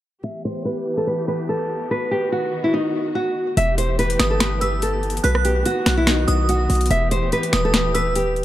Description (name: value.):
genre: hip hop, trap.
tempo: 144 BPM.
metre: 4/4.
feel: half-time.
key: E harmonic minor.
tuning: A4 = 439 Hz.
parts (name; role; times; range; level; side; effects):
nylon-string guitar; melody; 0.2-8.4 s; D#4 to E5; -21 LUFS; equal; low-pass filter, ping-pong delay.
warm symphonic string section; sustained chords; 0.2-8.4 s; D#3 to G4; -28 LUFS; equal; low-pass filter.
hard-hitting 808-style bass; bass; 3.6-8.4 s; D#1 to B1; -21 LUFS; equal; none.
trap drum kit; drums; 3.6-8.4 s; finger snaps, hi-hat, rim click, snare drum; -23 LUFS; left 1 dB; overdrive.
glassy synth bell; second line; 4.2-8.1 s; D#6 to F#6; -27 LUFS; right 2 dB; chorus, ping-pong delay.
room: light reverb.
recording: dark, warm production.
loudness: -18 LUFS.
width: side -13 dB against mid.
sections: 0.2-3.6 A section; 3.6-8.4 B section.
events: filter sweep 0.2-3.6.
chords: 0.2 Em; 1.9 B; 3.6 Em; 5.2 B; 6.9 Em.